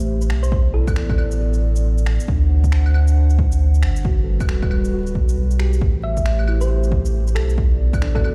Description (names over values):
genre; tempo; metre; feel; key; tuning
future garage; 136 BPM; 4/4; swing 61% on 16ths; A dorian; A4 = 441 Hz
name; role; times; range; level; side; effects
muted felt-like synth keys; accompaniment; 0.0-8.3 s; A3 to A4; -36 LUFS; equal; chorus, vintage 12-bit sampler grit, sidechain pumping, tape echo
dark analog pad; sustained chords; 0.0-8.3 s; G3 to F#5; -31 LUFS; equal; chorus, sidechain pumping
soft dub sub bass; bass; 0.0-8.3 s; D1 to D2; -20 LUFS; equal; tube saturation, sidechain pumping
electronic shaker, finger snaps and claves; drums; 0.2-8.3 s; none; -37 LUFS; equal; overdrive
thumb-piano-like synth pluck; melody; 0.4-1.4, 6.0-8.3 s; A4 to E5; -32 LUFS; equal; chorus, tape echo
electronic kick drum; drums; 0.5-8.2 s; none; -23 LUFS; equal; overdrive
room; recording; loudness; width
little or no reverb; played on a big sound system in a bare room, stone room reverb, vinyl crackle; -18 LUFS; mono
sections
0.0-8.3 A section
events
none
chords
0.0 Am7; 0.5 Bm7; 2.3 D7; 4.0 Gmaj7; 5.8 Am7; 7.6 Bm7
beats
0.08 | 0.52 0.96 1.40 1.84 | 2.29 2.73 3.17 3.61 | 4.05 4.49 4.93 5.37 | 5.82 6.26 6.70 7.14 | 7.58 8.02